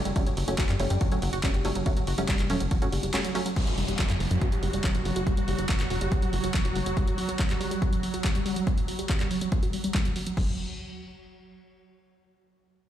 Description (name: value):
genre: driving peak-time techno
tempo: 141 BPM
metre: 4/4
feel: straight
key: unclear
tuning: A4 = 441 Hz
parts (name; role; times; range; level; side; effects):
- tight sequenced synth; riff; 0.1-10.6 s; F#3 to F#4; -32 LUFS; right 1 dB; chorus, sidechain pumping, ping-pong delay
- tight sequencer bass; bass; 0.1-6.9, 10.4-10.6 s; E1 to F#2; -29 LUFS; equal; sidechain pumping
- punchy analog drum machine; drums; 0.1-10.5 s; crash cymbal, handclaps, hi-hat, ride cymbal; -34 LUFS; equal; none
- filtered dub chord stab; stabs; 0.2-3.4 s; F#3 to C#4; -33 LUFS; right 1 dB; analog chorus, vintage 12-bit sampler grit, sidechain pumping, ping-pong delay
- electronic kick drum; drums; 0.2-10.5 s; none; -27 LUFS; equal; none
- swarming drone; drone; 4.3-10.4 s; F#3 to F#4; -34 LUFS; right 2 dB; built-in reverb, sidechain pumping
- downlifter; sound effects; 3.6-7.0 s; none; -37 LUFS; equal; none
room: little or no reverb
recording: played on a big sound system in a bare room, large studio reverb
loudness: -24 LUFS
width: side -11 dB against mid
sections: 0.0-3.6 A section; 3.6-10.4 B section; 10.4-12.1 C section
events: drop 0.0-3.6; filter sweep on synth arpeggio sound 3.6-10.4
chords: 0.0 F#m; 3.6 Emadd9 (rootless); 10.4 N.C.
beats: | 0.16 0.58 1.01 1.44 | 1.86 2.29 2.71 3.14 | 3.56 3.99 4.42 4.84 | 5.27 5.69 6.12 6.54 | 6.97 7.39 7.82 8.24 | 8.67 9.10 9.52 9.95 | 10.37